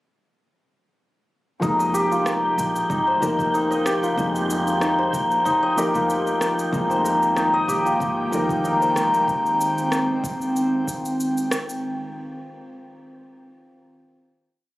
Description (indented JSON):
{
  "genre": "organic downtempo",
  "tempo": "94 BPM",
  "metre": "4/4",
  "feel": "swing 54% on 16ths",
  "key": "F minor",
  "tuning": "A4 = 440 Hz",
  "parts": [
    { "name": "felt-muted upright piano", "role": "accompaniment", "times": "1.6-9.3 s", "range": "F3 to Bb4", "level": "-26 LUFS", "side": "left 1 dB", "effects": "sidechain pumping, tape echo" },
    { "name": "santur", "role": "arpeggios", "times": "1.6-12.2 s", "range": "Eb4 to Eb5", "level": "-21 LUFS", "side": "left 1 dB", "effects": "tape echo" },
    { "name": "upright bass", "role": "bass", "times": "1.6-9.2 s", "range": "F1 to Bb1", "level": "-32 LUFS", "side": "right 1 dB", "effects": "sidechain pumping" },
    { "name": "electronic kick drum", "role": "drums", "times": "1.6-11.0 s", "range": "none", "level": "-32 LUFS", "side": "equal", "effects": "overdrive" },
    { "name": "electronic shaker and rim click", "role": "drums", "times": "1.6-11.8 s", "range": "none", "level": "-30 LUFS", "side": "equal", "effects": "overdrive" },
    { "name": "wind-like tuned noise texture", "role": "texture", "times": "2.1-9.3 s", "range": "G5", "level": "-33 LUFS", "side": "right 3 dB", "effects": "built-in reverb" },
    { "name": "airy breathy pad", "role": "sustained chords", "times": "7.2-11.8 s", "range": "Eb3 to G5", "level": "-26 LUFS", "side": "equal", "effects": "chorus, sidechain pumping" }
  ],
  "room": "light reverb",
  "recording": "recorded on a phone in the room, studio ambience, compression",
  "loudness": "-19 LUFS",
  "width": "side -17 dB against mid",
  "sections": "1.6-11.8 groove",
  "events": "none",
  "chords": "1.6 Fm11"
}